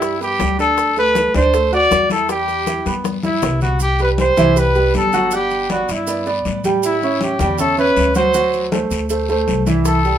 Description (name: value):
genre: latin, salsa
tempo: 159 BPM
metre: 4/4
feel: straight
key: unclear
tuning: A4 = 439 Hz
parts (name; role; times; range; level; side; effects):
- warm trumpet; melody; 0.0-10.2 s; E4 to D5; -17 LUFS; equal; none
- clear baby grand piano; accompaniment; 0.0-10.2 s; E3 to G5; -20 LUFS; right 3 dB; none
- upright bass; bass; 0.0-10.2 s; G1 to A2; -22 LUFS; left 1 dB; none
- bongos; percussion; 0.0-3.6, 9.9-10.0 s; none; -27 LUFS; left 8 dB; none
- congas; percussion; 0.0-10.2 s; none; -24 LUFS; left 4 dB; none
- guiro; percussion; 0.0-10.2 s; none; -32 LUFS; left 7 dB; none
- maracas; percussion; 0.0-10.2 s; none; -32 LUFS; right 6 dB; none
room: moderate studio reverb, RT60 0.6 s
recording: minimal, uncompressed stereo recording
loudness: -14 LUFS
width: side -10 dB against mid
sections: 0.0-3.8 A section; 3.8-10.2 B section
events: drum fill 2.9-3.8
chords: 0.0 Cmaj7 (rootless); 0.8 D; 2.3 Em; 3.8 Cmaj7; 5.3 Gmaj7; 6.8 A7; 8.3 D7